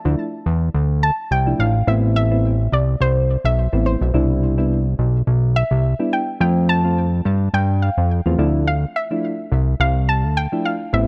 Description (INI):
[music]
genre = afrobeats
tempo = 106 BPM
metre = 4/4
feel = swing 55% on 16ths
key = unclear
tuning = A4 = 440 Hz
[part]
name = soft round pluck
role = melody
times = 0.0-11.1 s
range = C5 to A5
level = -26 LUFS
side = equal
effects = chorus
[part]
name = soft electric-piano-like synth keys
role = accompaniment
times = 0.0-11.1 s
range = B2 to F4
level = -25 LUFS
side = equal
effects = chorus
[part]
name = fat analog bass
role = bass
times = 0.1-11.1 s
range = A1 to G2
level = -19 LUFS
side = equal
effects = none
[sound]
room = little or no reverb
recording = dark, warm production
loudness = -19 LUFS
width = mono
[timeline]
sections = 0.0-1.9 A section; 1.9-11.1 B section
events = none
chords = 0.0 Dmadd9; 1.9 Amadd9; 4.1 Cmaj7; 6.4 F; 8.4 Dmadd9